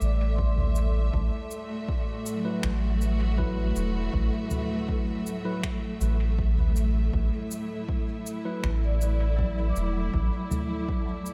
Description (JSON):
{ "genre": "ambient dub", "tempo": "80 BPM", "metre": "4/4", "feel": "straight", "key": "unclear", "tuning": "A4 = 440 Hz", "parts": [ { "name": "clear studio string section", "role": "sustained chords", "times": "0.0-11.3 s", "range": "A2 to E5", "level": "-36 LUFS", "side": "equal", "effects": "none" }, { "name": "vibraphone with medium mallets", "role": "arpeggios", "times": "0.0-11.3 s", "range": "F#3 to D6", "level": "-38 LUFS", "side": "equal", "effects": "tape echo" }, { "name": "soft dub sub bass", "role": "bass", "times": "0.0-10.3 s", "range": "E1 to A1", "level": "-27 LUFS", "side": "equal", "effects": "none" }, { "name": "soft-mallet drum kit", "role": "drums", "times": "0.0-11.3 s", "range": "cabasa, finger snaps, toms", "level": "-37 LUFS", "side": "equal", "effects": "dub echo" }, { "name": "electronic kick drum", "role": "drums", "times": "0.4-11.0 s", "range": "none", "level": "-33 LUFS", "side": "equal", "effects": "none" }, { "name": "tine electric piano", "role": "stabs", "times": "2.5-8.7 s", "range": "F#3 to B4", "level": "-40 LUFS", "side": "equal", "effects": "dub echo" } ], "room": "small room ambience", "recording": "echo-heavy mix", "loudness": "-27 LUFS", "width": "mono", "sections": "0.0-11.3 A section", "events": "none", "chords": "0.0 Am; 1.1 Esus2" }